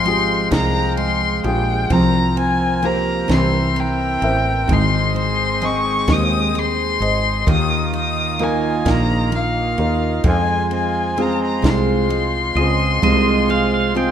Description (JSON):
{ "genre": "acoustic folk-pop ballad", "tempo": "43 BPM (dotted quarters)", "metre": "6/8", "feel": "straight", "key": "F minor", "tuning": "A4 = 439 Hz", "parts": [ { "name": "dark violin", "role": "melody", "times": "0.0-14.1 s", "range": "F5 to Eb6", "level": "-21 LUFS", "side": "left 3 dB", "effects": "none" }, { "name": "warm concert grand piano", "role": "accompaniment", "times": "0.0-14.1 s", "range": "C3 to E5", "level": "-24 LUFS", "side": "equal", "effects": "none" }, { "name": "hand-pumped harmonium", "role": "sustained chords", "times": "0.0-14.1 s", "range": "Ab3 to G5", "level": "-27 LUFS", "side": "right 1 dB", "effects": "none" }, { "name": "picked steel-string acoustic guitar", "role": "arpeggios", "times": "0.0-14.1 s", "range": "Eb3 to Ab4", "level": "-22 LUFS", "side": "right 2 dB", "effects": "none" }, { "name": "woody fretless electric bass", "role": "bass", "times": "0.0-14.1 s", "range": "Ab1 to F2", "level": "-22 LUFS", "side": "equal", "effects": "none" }, { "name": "compact cocktail drum kit", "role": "drums", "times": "0.1-14.1 s", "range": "kick drum, ride cymbal, snare drum", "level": "-21 LUFS", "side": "equal", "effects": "none" }, { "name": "pedal steel guitar", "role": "second line", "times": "12.6-14.1 s", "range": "Eb5 to G5", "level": "-22 LUFS", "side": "right 6 dB", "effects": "none" } ], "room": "light reverb", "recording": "minimal, uncompressed stereo recording", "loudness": "-15 LUFS", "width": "side -9 dB against mid", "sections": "0.0-14.1 A section", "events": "none", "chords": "0.0 Fmadd9/Ab; 1.9 C7sus4; 3.3 C7; 4.7 Ab; 7.5 Ebsus2; 10.3 Fm; 13.0 Fm/C" }